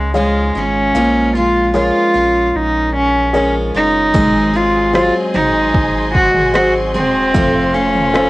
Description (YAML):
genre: pop ballad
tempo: 75 BPM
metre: 4/4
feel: straight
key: Bb minor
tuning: A4 = 441 Hz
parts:
  - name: rich cello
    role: melody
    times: 0.0-8.3 s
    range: Ab3 to Gb4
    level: -14 LUFS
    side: equal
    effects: cassette tape
  - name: warm grand piano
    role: accompaniment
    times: 0.0-8.3 s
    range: Db3 to F5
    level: -19 LUFS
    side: left 2 dB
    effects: cassette tape
  - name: picked steel-string acoustic guitar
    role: arpeggios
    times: 0.0-8.3 s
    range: F2 to Ab4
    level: -22 LUFS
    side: right 3 dB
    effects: cassette tape
  - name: warm sub bass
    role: bass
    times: 0.0-8.3 s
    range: Eb1 to Db2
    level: -23 LUFS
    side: equal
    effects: none
  - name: deep house drum kit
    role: drums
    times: 4.1-8.3 s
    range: kick drum, rim click, toms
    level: -18 LUFS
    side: equal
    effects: overdrive, cassette tape
  - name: warm symphonic string section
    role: sustained chords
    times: 4.2-8.3 s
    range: Ab4 to C6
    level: -24 LUFS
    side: left 1 dB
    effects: cassette tape
room: moderate booth ambience, RT60 0.2 s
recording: home recording on cassette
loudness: -12 LUFS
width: side -19 dB against mid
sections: 0.0-8.3 A section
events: none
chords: 0.0 Db; 0.9 Bbm7; 4.1 Ab7; 7.3 F